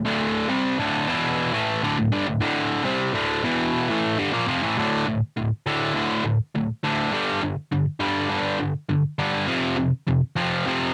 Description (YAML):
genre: punk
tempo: 204 BPM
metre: 4/4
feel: straight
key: D minor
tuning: A4 = 440 Hz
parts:
  - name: distorted electric guitar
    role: solo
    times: 0.0-10.9 s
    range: D2 to C4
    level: -23 LUFS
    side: equal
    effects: overdrive, cassette tape
room: light reverb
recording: home recording on cassette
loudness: -24 LUFS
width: mono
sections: 0.0-4.8 A section; 4.8-10.9 B section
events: none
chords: 0.5 C5; 0.8 D5; 1.1 E5; 1.5 A5; 1.8 D5; 2.9 C5; 3.1 D5; 3.4 E5; 3.9 A5; 4.2 Dm; 4.8 D5; 7.1 G5; 9.5 F5